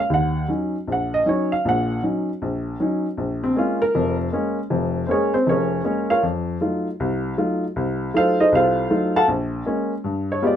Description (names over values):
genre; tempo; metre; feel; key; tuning
solo jazz; 157 BPM; 4/4; swing 64% on 8ths; Bb minor; A4 = 437 Hz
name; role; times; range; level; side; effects
dark upright piano; solo; 0.0-10.6 s; F1 to A5; -19 LUFS; equal; none
room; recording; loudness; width
light reverb; minimal, uncompressed stereo recording; -19 LUFS; side -9 dB against mid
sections
0.0-10.6 A section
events
upright piano solo 0.0-10.6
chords
0.1 Ebm7; 3.2 Bbm7; 6.2 F7b9; 9.3 Bbm7; 10.0 G7b9